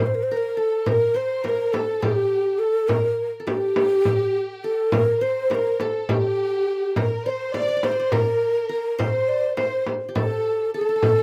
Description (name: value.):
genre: Turkish makam ensemble.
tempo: 207 BPM (eighths).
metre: 7/8.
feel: straight.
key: G makam nihavent.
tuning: A4 = 440 Hz.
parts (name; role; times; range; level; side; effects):
breathy mellow ney; melody; 0.0-11.2 s; G4 to D5; -24 LUFS; equal; none.
qanun; second line; 0.0-11.2 s; G4 to D5; -33 LUFS; equal; none.
warm symphonic violin section; second line; 0.3-11.2 s; G4 to D5; -34 LUFS; equal; none.
frame drum; percussion; 0.9-11.2 s; none; -28 LUFS; equal; none.
room: light reverb.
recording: none.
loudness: -22 LUFS.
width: mono.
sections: 0.0-11.2 A section.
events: none.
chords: none.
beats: 0.28 0.57 | 0.86 1.15 1.44 1.73 2.02 2.31 2.60 | 2.90 3.19 3.48 3.77 4.06 4.35 4.64 | 4.93 5.22 5.51 5.80 6.09 6.38 6.67 | 6.96 7.25 7.54 7.83 8.12 8.41 8.71 | 9.00 9.29 9.58 9.87 10.16 10.45 10.74 | 11.03.